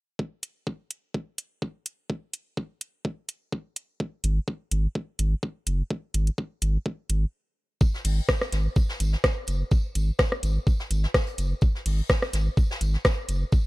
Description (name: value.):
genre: minimal techno.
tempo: 126 BPM.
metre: 4/4.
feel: swing 54% on 16ths.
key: unclear.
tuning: A4 = 438 Hz.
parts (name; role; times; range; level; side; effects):
electronic kick drum; drums; 0.2-13.6 s; none; -23 LUFS; equal; high-pass filter on kick.
garage drum kit; drums; 0.4-13.4 s; hi-hat, rim click; -27 LUFS; equal; none.
round analog bass; bass; 4.2-13.4 s; F#1 to G#1; -24 LUFS; equal; sidechain pumping.
jazz brush drum kit; drums; 7.8-13.6 s; hi-hat, snare drum, tambourine; -37 LUFS; left 1 dB; sidechain pumping on hats, high-pass filter on hats, high-pass filter on snare, sidechain pumping on perc, high-pass filter on perc, high-pass filter on room.
room: small room ambience.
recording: none.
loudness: -24 LUFS.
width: side -20 dB against mid.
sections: 0.2-7.8 A section; 7.8-13.7 B section.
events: stop 7.3-7.8.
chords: none.